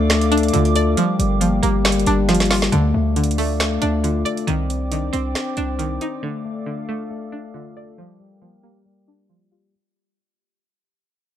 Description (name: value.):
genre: hip hop, trap.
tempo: 137 BPM.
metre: 4/4.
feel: half-time.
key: D phrygian.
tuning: A4 = 441 Hz.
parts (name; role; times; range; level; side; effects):
string-like resonator pluck; accompaniment; 0.0-9.7 s; D3 to D5; -23 LUFS; right 2 dB; chorus, phaser, low-pass filter.
dark analog pad; sustained chords; 0.0-9.7 s; A4 to D6; -30 LUFS; right 3 dB; lush chorus, low-pass filter.
mellow tine electric piano; arpeggios; 0.0-9.7 s; G3 to C5; -22 LUFS; left 5 dB; low-pass filter, tape echo.
hard-hitting 808-style bass; bass; 0.0-6.0 s; G1 to D2; -21 LUFS; right 1 dB; none.
trap drum kit; drums; 0.1-6.1 s; finger snaps, hi-hat, snare drum; -23 LUFS; right 2 dB; none.
room: digital ambience.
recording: dark, warm production.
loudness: -17 LUFS.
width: side -10 dB against mid.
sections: 0.0-2.7 A section; 2.7-9.7 B section.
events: drum fill 2.3-2.7; fade-out 2.7-9.7; filter sweep 2.7-9.7.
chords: 0.0 Dm; 1.0 Gm7; 2.7 Dm; 4.5 Cmadd9; 6.2 Dm; 8.0 Gm7.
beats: 0.10 0.54 | 0.97 1.41 1.85 2.29 | 2.73 3.16 3.60 4.04 | 4.48 4.92 5.35 5.79 | 6.23 6.67 7.10 7.54 | 7.98 8.42 8.86 9.29.